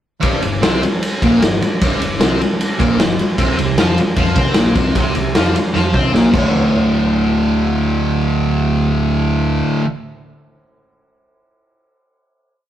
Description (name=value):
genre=garage rock duo or trio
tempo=152 BPM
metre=4/4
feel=straight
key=D minor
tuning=A4 = 441 Hz
part: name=fuzz guitar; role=riff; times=0.2-9.9 s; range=D2 to C5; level=-16 LUFS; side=equal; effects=distortion
part: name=overdriven fingered electric bass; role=bass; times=0.2-9.6 s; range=D1 to C3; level=-23 LUFS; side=equal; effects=none
part: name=raw garage drum kit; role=drums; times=0.2-6.4 s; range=crash cymbal, kick drum, ride cymbal, snare drum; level=-16 LUFS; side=equal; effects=none
room=moderate stone room reverb, RT60 1.4 s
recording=rough rehearsal-room recording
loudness=-13 LUFS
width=side -11 dB against mid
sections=0.2-6.5 pre-chorus; 6.5-9.7 final hit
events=drum fill 5.7-6.5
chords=0.2 Gmadd11; 3.4 Bbsus2; 6.3 D5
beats=| 0.24 0.64 1.03 1.42 | 1.82 2.21 2.60 3.00 | 3.39 3.78 4.17 4.57 | 4.96 5.35 5.74 6.13 | 6.53 6.92 7.32 7.71 | 8.10 8.50 8.89 9.29